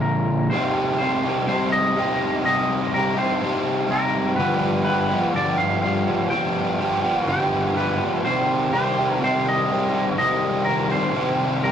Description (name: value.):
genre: rock.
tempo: 124 BPM.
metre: 4/4.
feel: straight.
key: C minor.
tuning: A4 = 440 Hz.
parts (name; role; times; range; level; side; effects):
twangy electric guitar; melody; 0.0-11.7 s; Bb4 to G5; -25 LUFS; equal; harmonic tremolo.
crunchy overdriven guitar; riff; 0.0-11.7 s; G2 to Bb4; -20 LUFS; equal; none.
room: wet booth ambience, RT60 0.3 s.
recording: rough rehearsal-room recording, tube saturation.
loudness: -19 LUFS.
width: side -8 dB against mid.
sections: 0.5-11.7 A section.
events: none.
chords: 0.0 Bb; 0.5 Cm; 4.4 G7; 8.2 Cm.